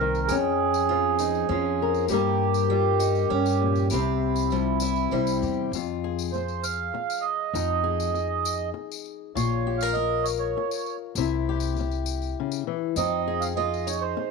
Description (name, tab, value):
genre	acoustic folk duo or small band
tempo	99 BPM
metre	3/4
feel	straight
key	F minor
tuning	A4 = 440 Hz
part	mellow accordion	second line	0.0-14.3 s	E4 to F5	-27 LUFS	right 12 dB	none
part	fingerpicked steel-string acoustic guitar	accompaniment	0.0-14.3 s	F2 to Bb4	-28 LUFS	left 16 dB	none
part	picked acoustic archtop guitar	arpeggios	0.0-5.7, 13.0-14.3 s	F3 to G5	-31 LUFS	right 10 dB	none
part	upright bass	bass	0.0-14.1 s	Bb1 to G2	-30 LUFS	left 1 dB	none
part	tambourine	percussion	0.1-14.0 s	none	-37 LUFS	left 15 dB	none
room	light reverb, small room ambience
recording	1960s-style stereo with parts hard left and right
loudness	-23 LUFS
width	side -4 dB against mid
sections	0.0-5.7 A section; 5.7-14.3 B section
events	accordion solo 5.7-14.3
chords	0.3 Bbm/F; 2.1 Gdim; 3.9 C; 5.7 Fm; 7.5 Fm7; 9.4 Bbm; 11.2 C; 13.0 Fm7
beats	| 0.30 0.90 1.50 | 2.11 2.71 3.31 | 3.92 4.52 5.13 | 5.73 6.33 6.94 | 7.54 8.15 8.75 | 9.36 9.96 10.56 | 11.17 11.77 12.37 | 12.97 13.58 14.18